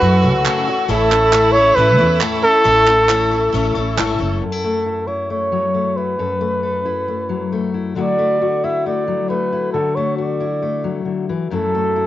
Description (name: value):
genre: indie folk with a building arrangement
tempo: 135 BPM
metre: 4/4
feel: straight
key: unclear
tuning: A4 = 443 Hz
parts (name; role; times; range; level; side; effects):
- dark trumpet; melody; 0.0-12.1 s; A4 to E5; -16 LUFS; right 1 dB; cassette tape, plate reverb
- rich fiddle; second line; 0.0-4.2 s; E4 to F#4; -24 LUFS; right 7 dB; cassette tape, plate reverb
- picked twelve-string acoustic guitar; accompaniment; 0.0-4.4 s; F#2 to A4; -21 LUFS; left 6 dB; cassette tape, plate reverb
- mellow tonewheel organ; sustained chords; 0.0-4.4 s; A4 to E6; -25 LUFS; equal; slow rotary speaker, cassette tape, plate reverb
- upright bass; bass; 0.0-4.4 s; F#1 to F#2; -19 LUFS; right 1 dB; none
- group handclap; percussion; 0.5-4.1 s; none; -20 LUFS; right 8 dB; none
- fingerpicked steel-string acoustic guitar; accompaniment; 4.4-12.1 s; F#2 to A4; -21 LUFS; left 5 dB; cassette tape, plate reverb
room: moderate small room reverb, RT60 0.5 s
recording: home recording on cassette, nothing above 7.6 kHz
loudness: -15 LUFS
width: side -13 dB against mid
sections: 0.0-4.4 A section; 4.4-12.1 B section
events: none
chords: 0.0 F#m7; 0.9 A; 4.4 F#m7; 8.0 Dadd9; 11.5 F#m7